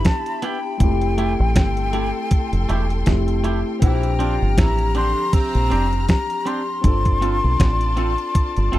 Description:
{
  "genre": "lovers rock reggae",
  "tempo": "80 BPM",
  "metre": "4/4",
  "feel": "swing 56% on 16ths",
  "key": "unclear",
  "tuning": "A4 = 442 Hz",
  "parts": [
    { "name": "breathy jazz flute", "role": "melody", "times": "0.0-8.8 s", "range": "G5 to C6", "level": "-25 LUFS", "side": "left 3 dB", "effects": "tape echo" },
    { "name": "rich studio string section", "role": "second line", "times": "0.0-8.8 s", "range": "F4 to F6", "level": "-32 LUFS", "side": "left 2 dB", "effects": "none" },
    { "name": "barky tine electric piano", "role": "accompaniment", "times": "0.0-8.8 s", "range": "F3 to A4", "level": "-26 LUFS", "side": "left 2 dB", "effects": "overdrive, wide subtle chorus, slapback echo" },
    { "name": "deep dub fingered electric bass", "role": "bass", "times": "0.0-8.8 s", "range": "E1 to B1", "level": "-20 LUFS", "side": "equal", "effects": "none" },
    { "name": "clean 12-bit digital drum machine", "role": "drums", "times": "0.0-8.8 s", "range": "hi-hat, kick drum, snare drum", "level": "-17 LUFS", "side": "equal", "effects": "none" },
    { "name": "twangy electric guitar", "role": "stabs", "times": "0.4-8.8 s", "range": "A3 to A4", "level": "-26 LUFS", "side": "right 4 dB", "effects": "none" },
    { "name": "clear horn section", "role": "second line", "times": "3.8-6.0 s", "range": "C3 to F4", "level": "-30 LUFS", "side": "right 5 dB", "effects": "none" }
  ],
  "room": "small room ambience",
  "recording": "dry, close 1970s-style studio recording",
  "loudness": "-17 LUFS",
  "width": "side -15 dB against mid",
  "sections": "0.0-8.8 A section",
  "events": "none",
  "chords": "0.0 Cmaj7 (rootless); 0.8 Fmaj9; 3.8 Bb69; 6.8 G9sus4",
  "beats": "0.05 | 0.80 1.56 2.31 3.07 | 3.82 4.58 5.33 6.08 | 6.84 7.59 8.35"
}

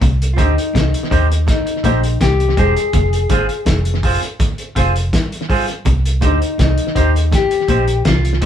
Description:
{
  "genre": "roots reggae",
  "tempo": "82 BPM",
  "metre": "4/4",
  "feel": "straight",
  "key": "C minor",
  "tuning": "A4 = 441 Hz",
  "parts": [
    { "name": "semi-hollow electric guitar", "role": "riff", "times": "0.0-8.5 s", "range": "E2 to Eb3", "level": "-26 LUFS", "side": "left 4 dB", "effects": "none" },
    { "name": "vintage muted fingered electric bass", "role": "bass", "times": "0.0-8.5 s", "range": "E1 to Eb2", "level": "-17 LUFS", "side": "equal", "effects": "none" },
    { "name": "cloth-damped thuddy drum kit", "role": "drums", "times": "0.0-8.5 s", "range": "hi-hat, kick drum, snare drum", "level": "-18 LUFS", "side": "equal", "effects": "tape echo" },
    { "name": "congas", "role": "percussion", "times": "0.0-8.5 s", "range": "none", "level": "-27 LUFS", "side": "right 5 dB", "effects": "none" },
    { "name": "mellow electric guitar", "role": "melody", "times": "0.3-8.4 s", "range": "Eb4 to Ab4", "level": "-19 LUFS", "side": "left 4 dB", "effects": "none" },
    { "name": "clean electric guitar", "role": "accompaniment", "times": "0.4-8.5 s", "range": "C4 to C5", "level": "-22 LUFS", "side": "right 5 dB", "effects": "none" },
    { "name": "warm upright piano", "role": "stabs", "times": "0.4-8.5 s", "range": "Eb4 to C5", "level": "-25 LUFS", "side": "right 1 dB", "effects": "none" }
  ],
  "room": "moderate small room reverb, RT60 0.5 s",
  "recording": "band playing live in one room",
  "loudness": "-13 LUFS",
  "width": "side -10 dB against mid",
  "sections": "0.0-8.5 A section",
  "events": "none",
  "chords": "0.0 Cm; 2.9 Fm; 5.9 Cm",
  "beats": "| 0.02 0.75 1.48 2.21 | 2.94 3.67 4.40 5.13 | 5.86 6.59 7.32 8.06"
}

